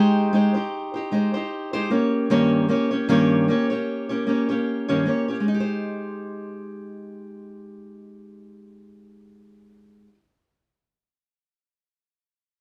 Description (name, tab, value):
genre	pop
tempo	76 BPM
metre	4/4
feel	swing 55% on 16ths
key	Ab major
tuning	A4 = 440 Hz
part	fingerpicked steel-string acoustic guitar	accompaniment	0.0-10.2 s	G2 to Db5	-23 LUFS	equal	none
room	moderate studio reverb, RT60 0.6 s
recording	band playing live in one room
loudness	-22 LUFS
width	mono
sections	0.0-5.5 A section; 5.5-8.6 B section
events	none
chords	0.0 Abmaj7; 1.9 Eb7/G; 5.5 Abmaj7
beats	0.73 1.52 | 2.31 3.10 3.89 4.68 | 5.47 6.26 7.05 7.84